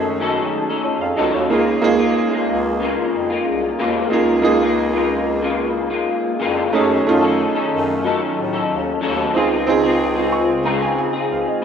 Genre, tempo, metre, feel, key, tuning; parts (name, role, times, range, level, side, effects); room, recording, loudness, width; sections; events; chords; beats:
indie pop, bedroom pop; 92 BPM; 4/4; straight; Db major; A4 = 439 Hz
electric guitar through a small old amp; accompaniment; 0.0-11.6 s; Db3 to A4; -20 LUFS; left 4 dB; ensemble chorus, vibrato effect
warm upright piano; accompaniment; 0.0-11.6 s; Ab3 to Db6; -20 LUFS; right 5 dB; cassette tape, plate reverb
hollow soft pad; sustained chords; 0.0-11.6 s; Db3 to Gb4; -28 LUFS; left 1 dB; ensemble chorus
breathy bass clarinet; bass; 0.0-11.4 s; C2 to A2; -26 LUFS; left 2 dB
moderate small room reverb, RT60 0.5 s; rough home demo mix; -16 LUFS; side -7 dB against mid
0.0-11.6 A section
upright piano fill 10.0-11.6
0.0 Gbm6; 1.5 Db6; 6.7 Gbm6; 9.4 Dbmaj7
0.20 0.85 | 1.50 2.16 2.81 3.47 | 4.12 4.78 5.43 6.08 | 6.74 7.39 8.05 8.70 | 9.36 10.01 10.66 11.32